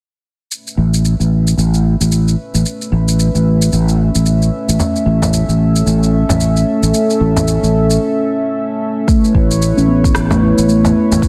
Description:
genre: organic downtempo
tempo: 112 BPM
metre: 4/4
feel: swing 60% on 16ths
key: A major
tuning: A4 = 440 Hz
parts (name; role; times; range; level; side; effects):
- warm analog pad; sustained chords; 0.5-11.3 s; A3 to E5; -20 LUFS; equal; chorus, sidechain pumping
- electronic shaker and rim click; drums; 0.5-11.3 s; none; -25 LUFS; equal; small room ambience
- sustaining fretless electric bass; bass; 0.8-11.2 s; A1; -15 LUFS; equal; subtle chorus, sidechain pumping
- frame drum; percussion; 4.8-11.2 s; none; -22 LUFS; equal; none
- steel tongue drum; arpeggios; 9.1-10.8 s; A3 to E4; -16 LUFS; equal; low-pass filter, tape echo
- electronic kick drum; drums; 9.1-11.3 s; none; -16 LUFS; equal; small room ambience
room: light reverb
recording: none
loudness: -14 LUFS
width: mono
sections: 0.5-9.1 A section; 9.1-11.3 B section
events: break 8.0-9.1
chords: 0.5 Aadd9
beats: | 0.51 1.04 1.58 2.12 | 2.65 3.19 3.72 4.26 | 4.79 5.33 5.87 6.40 | 6.94 7.47 8.01 8.54 | 9.08 9.62 10.15 10.69 | 11.22

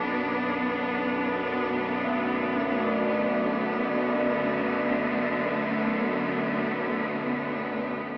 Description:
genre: dark ambient drone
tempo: free time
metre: none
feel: none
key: B minor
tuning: A4 = 440 Hz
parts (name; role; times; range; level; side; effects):
- rich studio cello section; sustained chords; 0.0-8.2 s; B2 to D4; -26 LUFS; equal; shimmer reverb
- bronze singing bowl; arpeggios; 0.0-8.2 s; F#3 to B3; -32 LUFS; equal; tape echo, shimmer reverb
- bowed-like drone; drone; 0.0-8.2 s; B1 to F#2; -31 LUFS; equal; built-in reverb
room: wet huge ambient reverb, RT60 7.3 s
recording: in a vast, echoing space, AM radio sound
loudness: -24 LUFS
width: side -30 dB against mid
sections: 0.0-8.2 A section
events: fade-in on singing bowl 0.0-8.2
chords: 0.4 Bm7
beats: free time

